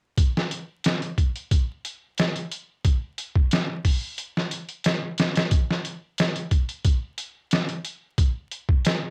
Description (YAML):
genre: trip hop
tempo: 90 BPM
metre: 4/4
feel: straight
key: none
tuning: none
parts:
  - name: trip hop sampler-style drum kit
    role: drums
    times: 0.2-9.0 s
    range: hi-hat, kick drum, snare drum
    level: -24 LUFS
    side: equal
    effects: small room ambience, cassette tape
room: moderate booth ambience, RT60 0.2 s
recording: home recording on cassette, vinyl crackle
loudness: -25 LUFS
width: mono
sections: 0.2-9.1 A section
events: none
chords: none